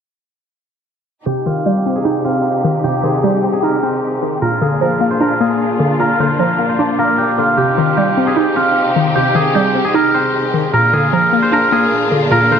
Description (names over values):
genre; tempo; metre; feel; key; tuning
hip hop; 152 BPM; 4/4; half-time; C minor; A4 = 440 Hz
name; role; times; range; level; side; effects
steel-string zither; melody; 1.3-12.6 s; F4 to D5; -15 LUFS; equal; low-pass filter, ping-pong delay
glassy wavetable pluck; accompaniment; 1.3-12.6 s; Bb2 to Eb4; -17 LUFS; equal; chorus, low-pass filter
warm studio string section; sustained chords; 1.3-12.6 s; Bb2 to G4; -20 LUFS; left 1 dB; low-pass filter
room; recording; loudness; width
light reverb, small room ambience; lossy compression artefacts; -12 LUFS; side -7 dB against mid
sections
1.3-12.6 A section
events
filter sweep 1.3-12.6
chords
1.3 Cm; 4.4 Bb; 7.6 Cm; 10.7 Bb